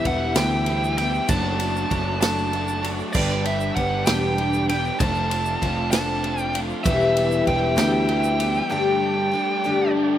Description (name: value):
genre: folk rock and heartland rock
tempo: 65 BPM (dotted quarters)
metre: 6/8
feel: straight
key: G major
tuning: A4 = 440 Hz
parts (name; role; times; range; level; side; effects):
- bluesy overdriven lead guitar; melody; 0.0-9.9 s; D5 to A5; -25 LUFS; right 1 dB; distortion, slapback echo
- picked twelve-string acoustic guitar; accompaniment; 0.0-10.2 s; G2 to B4; -25 LUFS; left 4 dB; slapback echo
- tonewheel organ; sustained chords; 0.0-10.2 s; D4 to E5; -35 LUFS; right 1 dB; slow rotary speaker
- crunchy overdriven guitar; riff; 0.0-10.2 s; E2 to G4; -28 LUFS; right 3 dB; slapback echo
- picked electric bass; bass; 0.1-8.6 s; E1 to D2; -26 LUFS; right 1 dB; none
- natural country drum kit; drums; 0.1-8.5 s; crash cymbal, kick drum, ride cymbal, snare drum; -27 LUFS; right 1 dB; none
- tube shaker; percussion; 0.4-8.6 s; none; -40 LUFS; right 16 dB; none
room: little or no reverb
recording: recorded outdoors, with no room sound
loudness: -19 LUFS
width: side -11 dB against mid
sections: 0.0-10.2 A section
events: none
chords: 0.0 Em; 1.3 D/F#; 3.1 G; 5.0 F6; 6.9 Em; 8.7 Gsus2